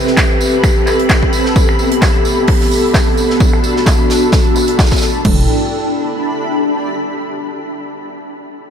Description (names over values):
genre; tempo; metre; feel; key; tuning
bass house; 130 BPM; 4/4; swing 56% on 16ths; E minor; A4 = 440 Hz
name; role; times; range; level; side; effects
dark analog pad; sustained chords; 0.0-5.5 s; B3 to G5; -18 LUFS; left 1 dB; chorus, sidechain pumping
granular cloud pad; texture; 0.0-7.1 s; C4 to B5; -18 LUFS; equal; built-in reverb, ensemble chorus, sidechain pumping
big rock drum kit; drums; 0.1-5.1 s; hi-hat, snare drum, tambourine; -23 LUFS; right 3 dB; sidechain pumping on hats, high-pass filter on hats, high-pass filter on snare, sidechain pumping on perc, high-pass filter on perc, high-pass filter on room
big-room dance drum kit; drums; 0.1-5.2 s; finger snaps, handclaps, hi-hat; -21 LUFS; equal; overdrive, low-pass filter on hats, low-pass filter on snare, low-pass filter on room
big-room dance drum kit; drums; 0.2-5.4 s; crash cymbal, kick drum, toms; -13 LUFS; equal; overdrive
hollow knocking FM bass; bass; 5.2-5.5 s; E1; -17 LUFS; equal; overdrive, sidechain pumping
room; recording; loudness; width
moderate huge ambient reverb, RT60 7.7 s; dreamy mix soaked in reverb; -11 LUFS; side -8 dB against mid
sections
0.0-5.2 A section; 5.2-7.1 B section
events
filter sweep on drum 0.0-5.2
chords
0.0 Amadd9; 1.6 Gadd9; 5.2 Em7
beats
0.17 0.64 1.10 | 1.56 2.02 2.48 2.94 | 3.40 3.87 4.33 4.79 | 5.25 5.71 6.17 6.63